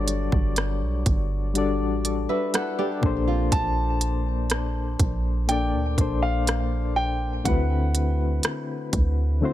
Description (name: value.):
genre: contemporary R&B.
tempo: 61 BPM.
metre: 4/4.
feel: straight.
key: unclear.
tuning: A4 = 439 Hz.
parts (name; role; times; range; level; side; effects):
warm baby grand piano; melody; 0.0-9.5 s; D5 to A5; -30 LUFS; equal; digital delay.
soft electric-piano-like synth keys; accompaniment; 0.0-9.5 s; Bb2 to F#5; -27 LUFS; left 5 dB; chorus, tremolo.
warm 808-style bass; bass; 0.0-9.4 s; G1 to D2; -25 LUFS; right 1 dB; none.
trap drum kit; drums; 0.1-9.2 s; hi-hat, kick drum, rim click; -25 LUFS; right 1 dB; none.
nylon-string guitar; arpeggios; 2.3-4.7 s; C4 to B4; -30 LUFS; right 6 dB; digital delay.
room: little or no reverb.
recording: none.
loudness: -22 LUFS.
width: side -13 dB against mid.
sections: 0.0-9.5 A section.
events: none.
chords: 0.0 Gmaj9; 3.0 Bbmaj9; 7.5 D13.